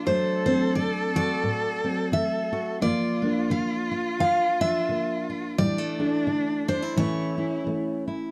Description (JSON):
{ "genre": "acoustic folk duo or small band", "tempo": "87 BPM", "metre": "4/4", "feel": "swing 58% on 8ths", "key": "D minor", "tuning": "A4 = 440 Hz", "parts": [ { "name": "picked steel-string acoustic guitar", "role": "melody", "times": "0.0-8.0 s", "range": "C5 to F5", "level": "-30 LUFS", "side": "equal", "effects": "none" }, { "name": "warm cello", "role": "second line", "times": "0.0-8.1 s", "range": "D4 to A4", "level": "-33 LUFS", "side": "equal", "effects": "none" }, { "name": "fingerpicked steel-string acoustic guitar", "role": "accompaniment", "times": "0.0-8.3 s", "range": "D2 to F#4", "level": "-32 LUFS", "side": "equal", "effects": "none" }, { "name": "felt-muted upright piano", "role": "arpeggios", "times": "0.0-8.3 s", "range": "E3 to D4", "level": "-33 LUFS", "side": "equal", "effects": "none" } ], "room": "light reverb", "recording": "dry, close 1970s-style studio recording", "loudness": "-26 LUFS", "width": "mono", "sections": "0.0-8.3 A section", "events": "none", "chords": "0.1 D7; 2.8 Gm7; 5.6 Asus4; 7.0 A", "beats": "| 0.06 0.75 1.44 2.13 | 2.82 3.51 4.20 4.89 | 5.58 6.27 6.97 7.66" }